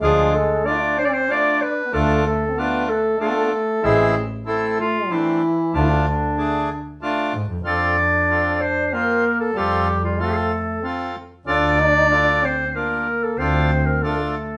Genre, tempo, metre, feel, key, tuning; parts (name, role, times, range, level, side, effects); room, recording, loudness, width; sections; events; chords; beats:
klezmer; 94 BPM; 3/4; straight; D dorian sharp4, F major from 7.6 s; A4 = 441 Hz
warm clarinet; melody; 0.0-14.6 s; D4 to D5; -23 LUFS; equal
warm trombone; second line; 0.0-14.6 s; D3 to E4; -27 LUFS; equal
accordion; accompaniment; 0.0-14.4 s; E3 to C5; -26 LUFS; equal
warm double bass; bass; 0.0-14.2 s; A1 to G#2; -27 LUFS; equal
wet studio reverb, RT60 0.6 s; band playing live in one room, nothing above 10.9 kHz; -20 LUFS; mono
0.0-7.6 A section; 7.6-14.6 B section
0.0 Dm; 3.8 Am; 5.7 Dm; 7.6 F; 11.5 Dm
| 0.02 0.65 1.29 | 1.92 2.56 3.19 | 3.83 4.47 5.10 | 5.74 6.38 7.01 | 7.65 8.29 8.92 | 9.56 10.20 10.84 | 11.47 12.11 12.75 | 13.39 14.02